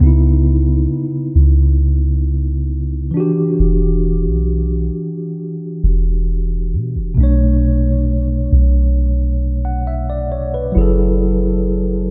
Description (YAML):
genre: contemporary R&B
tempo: 67 BPM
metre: 4/4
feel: straight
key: B minor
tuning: A4 = 442 Hz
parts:
  - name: mellow tine electric piano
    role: accompaniment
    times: 0.0-12.1 s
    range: B2 to F#5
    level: -21 LUFS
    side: equal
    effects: none
  - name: soft 808-style bass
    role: bass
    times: 0.0-12.1 s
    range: E1 to B2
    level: -17 LUFS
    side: equal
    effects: none
room: moderate cathedral reverb, RT60 4.2 s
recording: dreamy mix soaked in reverb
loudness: -16 LUFS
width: mono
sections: 0.0-12.1 A section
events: none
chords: 0.0 C#m9; 3.1 Em9; 7.2 Bm9; 10.8 F#m9